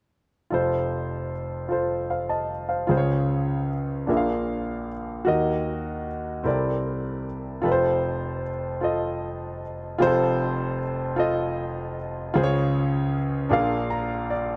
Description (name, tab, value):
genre	gospel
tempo	51 BPM (dotted quarters)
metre	6/8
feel	straight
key	unclear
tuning	A4 = 440 Hz
part	clear grand piano	solo	0.5-14.6 s	F1 to Bb5	-26 LUFS	equal	none
room	light reverb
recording	dark, warm production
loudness	-26 LUFS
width	mono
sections	0.5-10.0 A section; 10.0-14.6 B section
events	grand piano fill 13.5-14.6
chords	0.5 F; 2.9 Db; 4.1 Bb7; 5.3 Ebm; 6.5 C13; 7.6 F; 12.3 Db; 13.5 Bb7